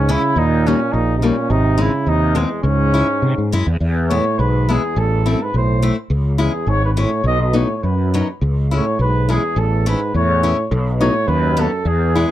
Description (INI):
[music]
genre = alpine folk, alpine dance band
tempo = 104 BPM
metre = 2/4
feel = rubato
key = C# harmonic minor, E major from 3.8 s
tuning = A4 = 440 Hz
[part]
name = mellow flugelhorn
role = melody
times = 0.0-12.3 s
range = G#3 to D#5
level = -20 LUFS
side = equal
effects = slapback echo
[part]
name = mellow euphonium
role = second line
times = 0.0-12.3 s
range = E2 to C#3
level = -23 LUFS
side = right 4 dB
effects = none
[part]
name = fretless electric bass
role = bass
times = 0.0-12.2 s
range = G#1 to B#2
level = -17 LUFS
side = equal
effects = ensemble chorus
[part]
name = picked acoustic archtop guitar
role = accompaniment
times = 0.1-12.3 s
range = F#3 to E4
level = -20 LUFS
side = left 4 dB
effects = none
[sound]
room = light reverb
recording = dark, warm production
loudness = -15 LUFS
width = side -13 dB against mid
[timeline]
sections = 0.0-3.8 A section; 3.8-12.3 B section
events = none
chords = 0.4 D#; 1.5 G#; 2.6 C#m; 3.8 E; 5.0 Am; 6.1 C#m; 7.2 B; 8.4 C#m; 9.6 A; 10.7 B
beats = | 0.37 0.93 | 1.50 2.07 | 2.64 3.22 | 3.80 4.39 | 4.97 5.54 | 6.10 6.67 | 7.24 7.83 | 8.41 8.99 | 9.57 10.15 | 10.71 11.28 | 11.86